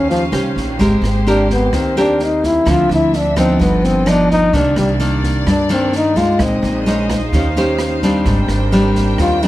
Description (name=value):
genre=bossa nova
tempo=129 BPM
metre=4/4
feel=straight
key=unclear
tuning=A4 = 439 Hz
part: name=breathy trombone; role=melody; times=0.0-9.5 s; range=F3 to F4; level=-16 LUFS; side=left 2 dB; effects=none
part: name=nylon-string guitar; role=accompaniment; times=0.0-9.5 s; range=G2 to C5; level=-16 LUFS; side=equal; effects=none
part: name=warm chamber string section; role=sustained chords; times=0.0-9.5 s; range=Bb3 to G5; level=-25 LUFS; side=equal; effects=none
part: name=upright bass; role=bass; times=0.0-9.5 s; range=G1 to G2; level=-19 LUFS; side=right 1 dB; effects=none
part: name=open jazz drum kit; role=drums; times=0.1-9.5 s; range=kick drum, rim click, snare drum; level=-24 LUFS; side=right 1 dB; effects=none
room=light reverb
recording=none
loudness=-12 LUFS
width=side -15 dB against mid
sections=0.0-9.5 A section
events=trombone solo 0.0-9.5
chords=0.0 Eb13; 0.8 Abmaj9; 2.7 Dm9; 3.6 G7b13; 4.5 Cm9; 6.4 Bbm11; 7.3 Eb13; 8.3 Abmaj9#11